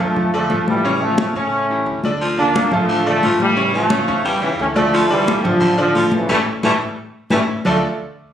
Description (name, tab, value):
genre	latin, salsa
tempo	176 BPM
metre	4/4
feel	straight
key	D harmonic minor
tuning	A4 = 439 Hz
part	bright trombone section	melody	0.0-7.8 s	C#3 to D4	-18 LUFS	equal	none
part	bright grand piano	accompaniment	0.0-7.8 s	C#3 to D5	-22 LUFS	equal	none
part	upright bass	bass	0.0-7.8 s	A1 to A2	-30 LUFS	equal	none
part	congas	percussion	0.2-7.7 s	none	-21 LUFS	left 1 dB	none
part	raspy baritone saxophone	second line	2.2-7.8 s	D3 to G3	-21 LUFS	equal	none
room	moderate small room reverb, RT60 0.5 s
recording	recorded on a phone in the room, studio reverb, compression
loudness	-15 LUFS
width	side -9 dB against mid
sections	0.0-7.7 A section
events	band accent 6.3-7.7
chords	0.0 Dm; 0.8 A7; 2.2 Dm; 3.6 A7; 4.9 Dm; 6.3 A; 7.7 Dm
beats	0.17 0.51 | 0.85 1.19 1.53 1.87 | 2.21 2.54 2.88 3.23 | 3.56 3.90 4.25 4.59 | 4.93 5.27 5.61 5.95 | 6.29 6.63 6.97 7.31 | 7.65